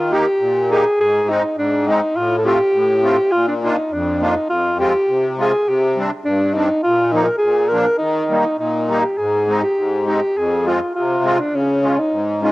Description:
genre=alpine folk, alpine dance band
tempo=102 BPM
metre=2/4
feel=straight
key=Eb major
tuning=A4 = 442 Hz
part: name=mellow alto saxophone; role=melody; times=0.0-12.5 s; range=Db4 to Bb4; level=-16 LUFS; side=equal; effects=cassette tape
part: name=musette accordion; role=accompaniment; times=0.0-12.5 s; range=F2 to G4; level=-20 LUFS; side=left 1 dB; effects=none
room=light reverb, small room ambience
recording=home recording on cassette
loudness=-15 LUFS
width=side -19 dB against mid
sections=0.0-9.2 A section; 9.2-12.5 B section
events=none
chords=0.0 Eb; 1.0 Ab; 2.2 F/A; 3.3 Bb; 4.5 Fm; 5.7 Csus2; 6.8 Bbsus4; 7.4 Bb7; 8.0 Eb; 9.2 Ab; 10.4 Fm; 11.5 Db

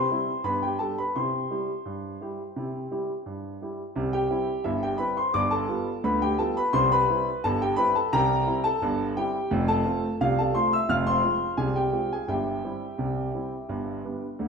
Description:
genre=ragtime piano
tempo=86 BPM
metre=2/4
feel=straight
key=C major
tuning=A4 = 440 Hz
part: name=dark concert grand piano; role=solo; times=0.0-14.5 s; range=F1 to F6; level=-24 LUFS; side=equal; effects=none
room=wet large studio reverb, RT60 1.4 s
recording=band playing live in one room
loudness=-24 LUFS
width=side -5 dB against mid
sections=0.0-4.0 A section; 4.0-14.5 B section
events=none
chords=0.4 G; 1.1 C; 5.3 G7; 6.7 C; 8.1 C7; 9.5 F; 10.9 Fm; 12.3 C/G; 13.7 G

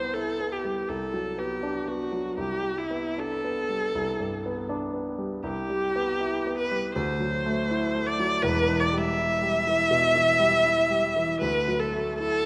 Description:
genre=classical, impressionist duo for viola and grand piano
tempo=80 BPM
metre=4/4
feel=rubato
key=E minor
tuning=A4 = 439 Hz
part: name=warm viola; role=melody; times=0.0-12.5 s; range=E4 to E5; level=-28 LUFS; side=equal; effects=none
part: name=warm grand piano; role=accompaniment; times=0.0-12.5 s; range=E1 to E4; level=-31 LUFS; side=equal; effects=none
room=wet concert hall reverb, RT60 1.9 s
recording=none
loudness=-26 LUFS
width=mono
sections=0.0-12.5 A section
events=none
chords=0.0 Cmaj7; 0.9 Bm/C; 2.4 Gadd9/C; 5.4 Cmaj7; 7.0 Dadd9; 8.4 Em; 11.4 Dadd9

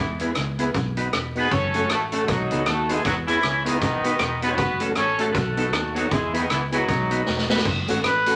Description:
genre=ska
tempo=156 BPM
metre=4/4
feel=swing 60% on 8ths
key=unclear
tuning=A4 = 440 Hz
part: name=clear horn section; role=melody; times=0.0-7.5 s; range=D#3 to C#5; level=-26 LUFS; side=equal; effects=none
part: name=fingered electric bass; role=bass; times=0.0-8.4 s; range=E1 to E2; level=-33 LUFS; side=equal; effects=none
part: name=clean electric guitar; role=accompaniment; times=0.2-8.4 s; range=B3 to B4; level=-33 LUFS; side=equal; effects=spring reverb
part: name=mellow tonewheel organ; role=stabs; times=0.2-8.4 s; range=A3 to B4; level=-31 LUFS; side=equal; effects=chorus vibrato, fast rotary speaker
part: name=street-band drum kit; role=drums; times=0.2-8.3 s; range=crash cymbal, hi-hat, kick drum, rim click, snare drum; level=-28 LUFS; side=equal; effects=dub echo
part: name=tambourine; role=percussion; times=7.9-8.3 s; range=none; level=-44 LUFS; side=equal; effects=none
part: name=clear trumpet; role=melody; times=8.1-8.4 s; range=B4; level=-21 LUFS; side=equal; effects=none
room=wet large studio reverb, RT60 0.9 s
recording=none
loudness=-23 LUFS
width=mono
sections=0.0-7.7 A section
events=drum fill 7.3-7.7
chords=0.0 E; 0.7 B; 1.5 F#m; 2.3 B7; 3.0 E; 3.8 B; 4.6 F#m; 5.4 B7; 6.1 E; 6.9 B; 7.7 F#m

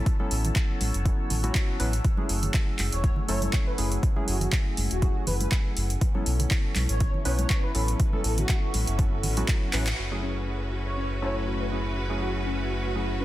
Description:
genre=deep house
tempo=121 BPM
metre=4/4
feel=swing 54% on 16ths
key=F# minor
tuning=A4 = 440 Hz
part: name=deep dark ambient pad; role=sustained chords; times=0.0-13.2 s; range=A3 to E6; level=-39 LUFS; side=equal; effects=chorus, built-in reverb, sidechain pumping
part: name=warm analog keys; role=stabs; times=0.0-13.2 s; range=F#3 to B4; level=-34 LUFS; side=equal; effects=chorus, sidechain pumping, low-pass filter, digital delay
part: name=electronic kick drum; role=drums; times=0.1-9.6 s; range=none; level=-25 LUFS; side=equal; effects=overdrive
part: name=punchy analog drum machine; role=drums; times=0.1-10.0 s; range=handclaps, hi-hat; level=-32 LUFS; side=right 1 dB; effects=overdrive, low-pass filter on hats, low-pass filter on cymbals, low-pass filter on snare
part: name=congas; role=percussion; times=0.2-9.5 s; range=none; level=-36 LUFS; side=right 1 dB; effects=none
part: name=sub bass with octave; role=bass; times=0.3-13.2 s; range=E1 to B1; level=-28 LUFS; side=equal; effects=sidechain pumping
part: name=breathy flute-like synth lead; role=melody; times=2.9-13.2 s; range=F#4 to C#5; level=-35 LUFS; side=equal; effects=ensemble chorus, digital delay
part: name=bright studio string section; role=texture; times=6.0-13.2 s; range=C#4 to E5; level=-37 LUFS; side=right 1 dB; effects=sidechain pumping
part: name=warbly dusty pluck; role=arpeggios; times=10.0-13.2 s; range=C#4 to F#4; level=-38 LUFS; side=left 5 dB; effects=analog chorus, sidechain pumping, digital delay
room=little or no reverb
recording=dense, heavily limited modern master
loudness=-24 LUFS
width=side -15 dB against mid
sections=0.0-10.0 A section; 10.0-13.2 B section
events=drum fill 9.7; band accent 9.9; filter sweep on synth pluck 10.0-13.2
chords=0.0 A6; 2.0 F#m9; 6.0 B9sus4; 7.8 A6; 10.0 F#m9

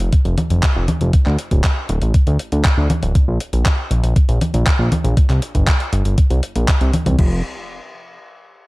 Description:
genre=italo disco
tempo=119 BPM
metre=4/4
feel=straight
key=unclear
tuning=A4 = 440 Hz
part: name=fat analog bass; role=bass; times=0.0-7.4 s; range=D1 to D2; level=-17 LUFS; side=equal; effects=tube saturation
part: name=gated 80s digital drum machine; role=drums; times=0.0-7.3 s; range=congas, crash cymbal, handclaps, hi-hat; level=-22 LUFS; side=equal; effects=gated reverb, overdrive
part: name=electronic kick drum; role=drums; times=0.1-7.3 s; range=none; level=-14 LUFS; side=equal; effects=none
room=little or no reverb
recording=dark, warm production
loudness=-14 LUFS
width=side -22 dB against mid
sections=0.0-7.2 A section; 7.2-8.7 B section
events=none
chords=none

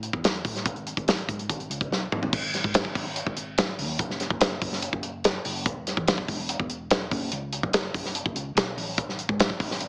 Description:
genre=math rock and midwest emo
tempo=144 BPM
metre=4/4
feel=straight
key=unclear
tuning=A4 = 440 Hz
part: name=hollow-body short-scale fingered electric bass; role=bass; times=0.0-9.9 s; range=E1 to A2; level=-35 LUFS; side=equal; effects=none
part: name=modern studio drum kit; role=drums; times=0.0-9.9 s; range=crash cymbal, hi-hat, kick drum, snare drum, toms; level=-25 LUFS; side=equal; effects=none
room=light reverb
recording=heavily compressed radio sound, small speaker sound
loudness=-24 LUFS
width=side -40 dB against mid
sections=0.0-2.3 A section; 2.3-9.9 B section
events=drum fill 1.9-2.3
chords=none

